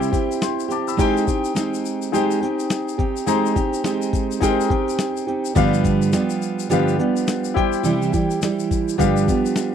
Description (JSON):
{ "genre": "acoustic pop", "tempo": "105 BPM", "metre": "4/4", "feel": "swing 60% on 16ths", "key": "unclear", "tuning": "A4 = 443 Hz", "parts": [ { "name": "fingerpicked steel-string acoustic guitar", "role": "accompaniment", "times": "0.0-9.7 s", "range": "G2 to G4", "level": "-20 LUFS", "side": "right 5 dB", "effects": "none" }, { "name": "warm grand piano", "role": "accompaniment", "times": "0.0-9.7 s", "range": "D4 to E6", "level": "-24 LUFS", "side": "left 15 dB", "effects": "none" }, { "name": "tube shaker", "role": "percussion", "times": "0.0-9.7 s", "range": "none", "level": "-34 LUFS", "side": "left 27 dB", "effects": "none" }, { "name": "dusty soul sampler-style drum kit", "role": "drums", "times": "0.1-9.7 s", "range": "kick drum, shaker, snare drum", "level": "-24 LUFS", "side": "left 2 dB", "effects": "none" } ], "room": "light reverb", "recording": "dry, close 1970s-style studio recording", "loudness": "-18 LUFS", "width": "side -8 dB against mid", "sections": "0.0-9.7 A section", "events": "none", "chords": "0.0 C; 1.0 Abmaj7; 5.6 G7; 7.6 C; 9.0 G7", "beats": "0.41 | 0.98 1.55 2.12 2.70 | 3.27 3.84 4.41 4.99 | 5.56 6.13 6.70 7.27 | 7.85 8.42 8.99 9.56" }